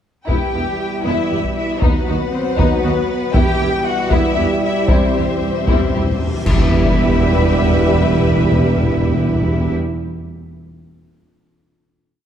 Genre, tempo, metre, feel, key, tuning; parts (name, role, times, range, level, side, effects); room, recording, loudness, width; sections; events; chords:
cinematic, epic orchestral film score; 78 BPM (dotted quarters); 6/8; straight; E minor; A4 = 440 Hz
warm symphonic violin section; melody; 0.3-9.7 s; D#4 to B4; -26 LUFS; left 5 dB
warm symphonic violin section; second line; 0.3-9.7 s; B4 to G5; -24 LUFS; left 5 dB
warm symphonic viola section; accompaniment; 0.3-9.7 s; G3 to G4; -26 LUFS; right 1 dB
mellow trombone section; sustained chords; 0.3-9.7 s; B2 to G3; -24 LUFS; right 3 dB
rich symphonic string section; sustained chords; 0.3-9.7 s; G3 to F#5; -26 LUFS; left 1 dB
warm French horn section; sustained chords; 0.3-9.7 s; B3 to F#4; -27 LUFS; left 3 dB
dark tuba; bass; 0.3-9.7 s; E1 to D#2; -24 LUFS; right 3 dB
rich symphonic cello section; bass; 0.3-9.7 s; B3 to G4; -24 LUFS; right 2 dB
rich symphonic double bass section; bass; 0.3-9.7 s; D#2 to E2; -23 LUFS; right 3 dB
solo taiko drums; drums; 0.3-6.2 s; -19 LUFS; equal
timpani; percussion; 0.3-1.0, 4.9-9.7 s; E2; -21 LUFS; left 1 dB
cymbal swell, clash cymbals and concert bass drum; percussion; 3.3-7.4 s; -23 LUFS; equal
reverse cymbal and impact; sound effects; 6.4-8.0 s; -26 LUFS; equal
wet scoring stage reverb, RT60 1.6 s; dark, warm production; -14 LUFS; side -9 dB against mid
0.3-6.5 theme; 6.5-9.5 final chord
timpani fill 4.9-6.5; reverse cymbal 6.4; band accent 6.5-7.0; impact 6.5-8.0
0.3 Em; 1.8 B/D#; 3.3 Em; 4.9 C/E; 6.5 Em